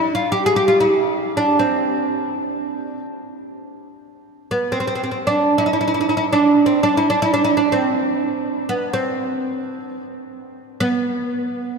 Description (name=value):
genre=Turkish makam ensemble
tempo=free time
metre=none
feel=none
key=unclear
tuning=A4 = 440 Hz
part: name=oud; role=solo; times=0.0-11.8 s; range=B3 to Ab4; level=-17 LUFS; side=right 1 dB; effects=none
room=wet cathedral reverb, RT60 4.9 s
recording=in a vast, echoing space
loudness=-16 LUFS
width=side -4 dB against mid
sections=0.0-11.8 A section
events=slowing down 9.0-11.8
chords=none